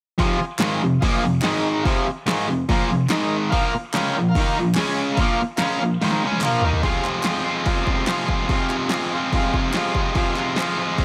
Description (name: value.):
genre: garage rock duo or trio.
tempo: 144 BPM.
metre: 4/4.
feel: straight.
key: F minor.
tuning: A4 = 440 Hz.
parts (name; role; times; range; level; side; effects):
combo organ; sustained chords; 0.2-11.0 s; Eb4 to Ab5; -31 LUFS; equal; none.
overdriven electric guitar; riff; 0.2-11.0 s; F2 to F4; -23 LUFS; equal; none.
punchy analog drum machine; drums; 0.2-11.0 s; hi-hat, kick drum, snare drum, toms; -26 LUFS; equal; none.
group handclap; percussion; 0.6-10.7 s; none; -33 LUFS; equal; none.
room: light reverb, digital ambience.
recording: none.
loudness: -21 LUFS.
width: mono.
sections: 0.2-6.8 A section; 6.8-11.0 B section.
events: drum fill 6.0-6.8.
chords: 0.2 Fm; 1.4 Ab5; 1.9 Fm; 3.1 Ab5; 3.5 Bb5; 4.8 Db5; 5.2 Bb5; 6.8 Fm.